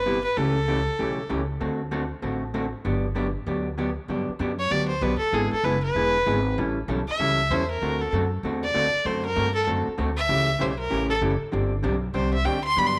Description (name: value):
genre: country, western swing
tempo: 194 BPM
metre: 4/4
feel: swing 62% on 8ths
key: G major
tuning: A4 = 440 Hz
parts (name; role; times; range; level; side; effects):
- rich fiddle; melody; 0.0-1.3, 4.6-13.0 s; G#4 to C6; -27 LUFS; equal; none
- upright bass; bass; 0.0-13.0 s; E1 to G2; -31 LUFS; equal; none
- vintage hollow-body jazz guitar; accompaniment; 0.1-13.0 s; C3 to A4; -30 LUFS; equal; none
room: moderate echo chamber reverb, RT60 1.6 s, small room ambience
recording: none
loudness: -25 LUFS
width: mono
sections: 0.0-4.1 A section; 4.1-13.0 B section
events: fiddle solo 4.1-13.0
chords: 0.4 A7/C#; 1.6 D7; 2.8 Gmaj7; 5.3 E7; 6.6 A7; 7.8 D9; 9.1 D7; 10.3 A7; 11.5 D7sus4